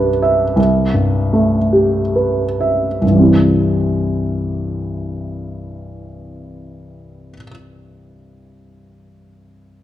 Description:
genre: classical, impressionist solo piano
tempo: 32-46 BPM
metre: 3/4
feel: rubato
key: C major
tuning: A4 = 438 Hz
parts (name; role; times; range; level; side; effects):
- clear grand piano; solo; 0.0-9.8 s; C2 to E5; -14 LUFS; equal; none
room: wet recital hall reverb, RT60 1.7 s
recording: dark, warm production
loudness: -13 LUFS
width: side -12 dB against mid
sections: 0.0-3.0 A section; 3.0-7.6 B section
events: slowing down 0.0-3.0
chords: 0.0 Cmaj9; 0.6 Am9/C; 3.0 C

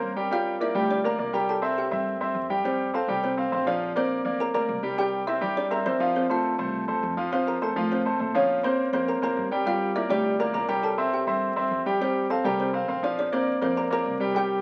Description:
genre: latin, salsa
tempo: 205 BPM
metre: 4/4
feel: straight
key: F major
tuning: A4 = 441 Hz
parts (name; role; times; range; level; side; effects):
- kalimba; melody; 0.0-14.6 s; C4 to Bb5; -30 LUFS; equal; none
- bright grand piano; accompaniment; 0.0-14.6 s; F3 to G5; -28 LUFS; equal; none
- upright bass; bass; 0.0-14.6 s; Bb1 to Bb2; -38 LUFS; equal; none
room: wet small room reverb, RT60 0.5 s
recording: very old 78 rpm record, vinyl crackle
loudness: -26 LUFS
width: mono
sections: 0.0-7.3 A section; 7.3-14.6 A section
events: none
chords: 0.3 Gm; 1.5 C; 2.6 Fsus2; 3.8 Bb; 5.0 C; 6.1 F; 8.5 Bbmadd9; 9.7 Gm; 10.8 C; 12.0 Fsus2; 13.2 Bb

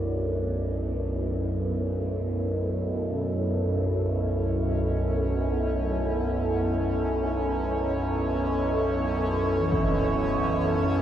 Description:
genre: dark ambient drone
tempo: free time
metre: none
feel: none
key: unclear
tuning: A4 = 440 Hz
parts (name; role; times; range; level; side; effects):
- deep dark ambient pad; sustained chords; 0.0-11.0 s; B3 to D5; -29 LUFS; right 1 dB; chorus, built-in reverb
- overtone-sweeping drone; drone; 0.0-11.0 s; B1 to F#2; -27 LUFS; equal; chorus, built-in reverb, phaser
- metallic inharmonic drone; texture; 4.4-11.0 s; C#4; -33 LUFS; right 1 dB; chorus, built-in reverb
- quartz singing bowl; arpeggios; 9.6-11.0 s; E3; -38 LUFS; left 3 dB; none
- impact; percussion; 9.7-9.9 s; none; -31 LUFS; equal; low-pass filter on sfx
room: wet huge ambient reverb, RT60 7.7 s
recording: lossy compression artefacts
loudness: -24 LUFS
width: side -10 dB against mid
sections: 0.0-11.0 A section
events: fade-in on impacts and reversed cymbals 0.0-11.0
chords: 0.0 Bm; 3.9 A/B

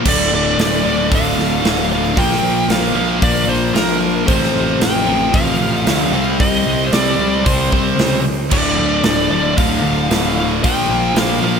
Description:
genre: hard rock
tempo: 113 BPM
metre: 4/4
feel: straight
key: D minor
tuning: A4 = 444 Hz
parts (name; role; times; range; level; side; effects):
- tonewheel organ; sustained chords; 0.0-11.6 s; F3 to D5; -31 LUFS; equal; none
- cranked stack guitar; riff; 0.0-11.6 s; D2 to C4; -22 LUFS; right 12 dB; overdrive
- crunchy overdriven guitar; riff; 0.0-11.6 s; D2 to C4; -22 LUFS; left 11 dB; none
- high-gain distorted guitar; riff; 0.0-11.6 s; D2 to C4; -22 LUFS; equal; distortion, slapback echo
- smooth overdriven lead guitar; melody; 0.1-11.6 s; Bb4 to G5; -20 LUFS; equal; none
- fuzz picked electric bass; bass; 0.1-11.6 s; D1 to D2; -21 LUFS; equal; overdrive
- big rock drum kit; drums; 0.1-11.3 s; crash cymbal, hi-hat, kick drum, snare drum; -19 LUFS; right 1 dB; none
room: moderate lush hall reverb, RT60 2.1 s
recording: big arena sound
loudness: -13 LUFS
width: side -6 dB against mid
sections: 0.0-11.6 A section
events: none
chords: 0.0 Dm; 2.2 Bb5; 4.3 F/A; 6.1 C5; 8.5 Dm; 10.6 Bb5

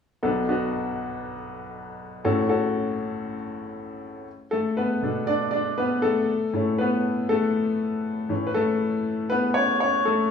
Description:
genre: pop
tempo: 119 BPM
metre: 4/4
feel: straight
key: B minor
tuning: A4 = 441 Hz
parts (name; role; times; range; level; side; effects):
- clear upright piano; solo; 0.2-10.3 s; A1 to D5; -23 LUFS; left 2 dB; none
room: wet large studio reverb, RT60 0.9 s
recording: band playing live in one room, small room ambience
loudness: -22 LUFS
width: side -7 dB against mid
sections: 0.2-4.3 A section; 4.3-10.3 B section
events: upright piano solo 4.3-10.3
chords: 0.2 Bm7; 2.2 F#m/A; 4.3 Bm7; 6.3 Aadd9; 8.3 A

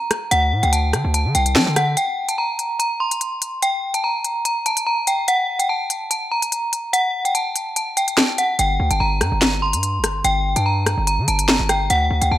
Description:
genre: hip hop, drill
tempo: 145 BPM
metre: 4/4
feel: half-time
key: G harmonic minor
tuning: A4 = 440 Hz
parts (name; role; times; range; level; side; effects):
- metallic FM bell; melody; 0.0-12.4 s; F#5 to C6; -20 LUFS; equal; chorus, low-pass filter, ping-pong delay
- drill drum kit; drums; 0.1-12.3 s; handclaps, hi-hat, rim click, snare drum; -19 LUFS; left 1 dB; none
- hard-hitting 808-style bass; bass; 0.3-2.0, 8.6-12.4 s; F#1 to F#3; -20 LUFS; equal; none
room: moderate plate reverb, RT60 1.0 s, digital ambience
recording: none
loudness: -17 LUFS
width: side -13 dB against mid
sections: 0.0-2.0 A section; 2.0-8.6 B section; 8.6-12.4 C section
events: kick muted 7.8-8.6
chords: 0.0 D; 2.0 N.C.; 8.6 Gm

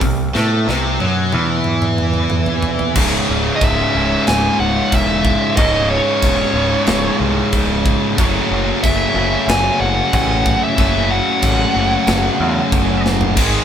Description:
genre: heavy metal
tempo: 92 BPM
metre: 4/4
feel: straight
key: C# minor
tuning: A4 = 440 Hz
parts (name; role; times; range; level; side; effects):
- heavy high-gain guitar; riff; 0.0-13.6 s; C#2 to A3; -21 LUFS; left 8 dB; distortion
- tight distorted guitar; riff; 0.0-13.6 s; C#2 to A3; -21 LUFS; right 7 dB; distortion
- growling picked electric bass; bass; 0.0-13.6 s; C#1 to A2; -21 LUFS; equal; overdrive
- tight metal drum kit; drums; 0.0-13.5 s; crash cymbal, hi-hat, kick drum, snare drum, toms; -20 LUFS; equal; none
- sludgy distorted guitar; riff; 2.9-13.6 s; C#2 to G#4; -22 LUFS; left 1 dB; overdrive
- dark smooth lead guitar; melody; 3.6-13.0 s; C#5 to G#5; -19 LUFS; equal; overdrive
room: moderate studio reverb, RT60 0.8 s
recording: band playing live in one room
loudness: -13 LUFS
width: side -9 dB against mid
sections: 0.0-3.0 A section; 3.0-13.6 B section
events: drum fill 0.3-3.0, 13.1-13.4; half time 3.0-13.6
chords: 0.0 G#7b9b13/B# (rootless); 3.0 C#m; 8.2 F#m

